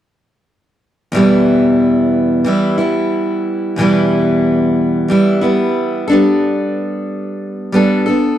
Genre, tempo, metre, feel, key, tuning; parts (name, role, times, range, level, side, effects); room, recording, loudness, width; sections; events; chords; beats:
pop; 91 BPM; 4/4; straight; E minor; A4 = 440 Hz
picked steel-string acoustic guitar; solo; 1.1-8.4 s; E2 to A4; -12 LUFS; equal
moderate small room reverb, RT60 0.5 s; dry, close 1970s-style studio recording; -12 LUFS; side -11 dB against mid
1.1-8.4 A section
1.1 Em; 6.1 Gadd9
| 1.14 1.80 2.46 3.12 | 3.78 4.44 5.10 5.76 | 6.42 7.08 7.74